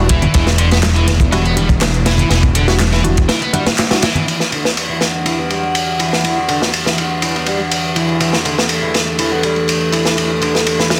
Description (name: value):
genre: breakbeat, breaks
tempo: 122 BPM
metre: 4/4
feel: straight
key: E minor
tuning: A4 = 443 Hz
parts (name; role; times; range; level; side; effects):
- filtered dub chord stab; stabs; 0.0-4.0 s; G3 to G4; -24 LUFS; equal; chorus, cassette tape, digital delay
- fat analog bass; bass; 0.0-3.3 s; E1; -17 LUFS; equal; none
- biting overdriven guitar; riff; 0.1-10.9 s; D3 to B3; -24 LUFS; equal; low-pass filter, digital delay
- crunchy breakbeat drum kit; drums; 0.1-11.0 s; kick drum, ride cymbal, snare drum; -18 LUFS; equal; high-pass filter on kick, high-pass filter on cymbals, high-pass filter on snare, high-pass filter on room
- house drum kit; drums; 0.1-11.0 s; handclaps, hi-hat; -28 LUFS; equal; low-pass filter on hats, low-pass filter on snare, low-pass filter on room
- congas; percussion; 0.2-4.2 s; none; -25 LUFS; equal; none
- dark analog pad; sustained chords; 4.3-11.0 s; E3 to F#5; -21 LUFS; equal; chorus, vintage 12-bit sampler grit, sidechain pumping
room: light reverb, small room ambience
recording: dense, heavily limited modern master, faint mains hum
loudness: -15 LUFS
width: mono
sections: 0.0-4.3 A section; 4.3-11.0 B section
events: filter sweep on analog synth pad 4.3-11.0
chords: 0.0 Em9